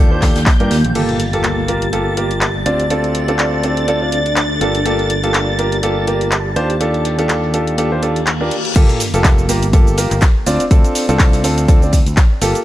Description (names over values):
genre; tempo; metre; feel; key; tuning
piano house; 123 BPM; 4/4; swing 56% on 16ths; G minor; A4 = 441 Hz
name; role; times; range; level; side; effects
string machine, violins; sustained chords; 0.0-8.8 s; G6 to A6; -24 LUFS; equal; ensemble chorus, sidechain pumping
clear grand piano; riff; 0.0-12.6 s; Bb3 to D5; -18 LUFS; equal; sidechain pumping, low-pass filter, analog delay
growling fingered electric bass; bass; 0.0-12.5 s; F1 to G2; -20 LUFS; equal; overdrive, sidechain pumping, low-pass filter
granular cloud pad; texture; 0.1-8.8 s; Eb3 to A5; -23 LUFS; right 1 dB; built-in reverb, sidechain pumping
electronic kick drum; drums; 0.2-0.6, 8.8-12.3 s; none; -11 LUFS; equal; none
house drum kit; drums; 0.2-12.6 s; crash cymbal, handclaps, hi-hat, ride cymbal, shaker; -21 LUFS; equal; none
loose indie drum kit; drums; 0.2-12.5 s; hi-hat, snare drum; -34 LUFS; left 3 dB; none
sub drop and reverse cymbal; sound effects; 1.0-2.9, 8.2-10.7 s; none; -27 LUFS; left 1 dB; none
room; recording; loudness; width
little or no reverb; faint mains hum; -12 LUFS; side -14 dB against mid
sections
1.0-8.8 A section; 8.8-12.6 B section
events
impact 1.0-2.9, 8.8-10.7; reverse cymbal 8.2-8.8; drop 8.8-12.6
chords
0.0 Ebmaj9#11; 1.0 Gm9; 2.7 Dm7; 4.6 Gm9; 6.6 Ebmaj9#11; 8.8 Gm9; 10.5 Dm7